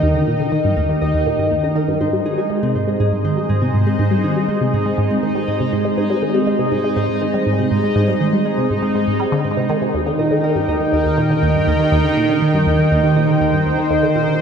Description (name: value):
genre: ambient, sequencer-driven space music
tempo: 121 BPM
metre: 4/4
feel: straight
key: unclear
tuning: A4 = 436 Hz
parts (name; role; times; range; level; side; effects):
- sweeping resonant pad; sustained chords; 0.0-14.4 s; Eb3 to G5; -19 LUFS; right 2 dB; chorus
- Celtic harp; arpeggios; 0.0-14.4 s; C4 to Bb5; -23 LUFS; moving between left 3 dB and right 3 dB; auto-pan, ping-pong delay
- resonant blip pluck; riff; 0.0-14.3 s; Eb2 to Ab3; -19 LUFS; left 1 dB; phaser, cassette tape, ping-pong delay
- bubbling stepped-filter texture; texture; 0.0-14.4 s; Eb4 to Eb5; -27 LUFS; right 2 dB; chorus, built-in reverb
room: wet huge ambient reverb, RT60 8.0 s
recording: dreamy mix soaked in reverb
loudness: -15 LUFS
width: side -7 dB against mid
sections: 0.0-14.4 A section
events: none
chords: 0.0 Eb; 2.0 Ab; 9.9 Eb